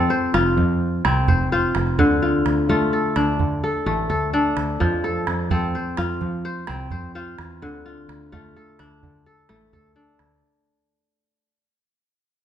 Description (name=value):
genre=west african traditional, West African string and xylophone music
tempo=85 BPM (dotted quarters)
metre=12/8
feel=straight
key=unclear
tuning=A4 = 439 Hz
part: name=kora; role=arpeggios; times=0.0-11.6 s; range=D3 to C5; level=-21 LUFS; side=left 1 dB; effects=none
part: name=overdriven fingered electric bass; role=bass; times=0.0-10.4 s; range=F1 to F3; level=-25 LUFS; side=right 1 dB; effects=none
part: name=calabash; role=percussion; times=0.3-10.4 s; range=none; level=-26 LUFS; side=right 3 dB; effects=none
room=wet large studio reverb, RT60 1.3 s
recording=band playing live in one room, nothing above 10.6 kHz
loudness=-18 LUFS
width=side -10 dB against mid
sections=0.0-10.4 A section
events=fade-out 0.0-10.4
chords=0.0 F; 2.0 Dm; 4.8 F; 7.6 Dm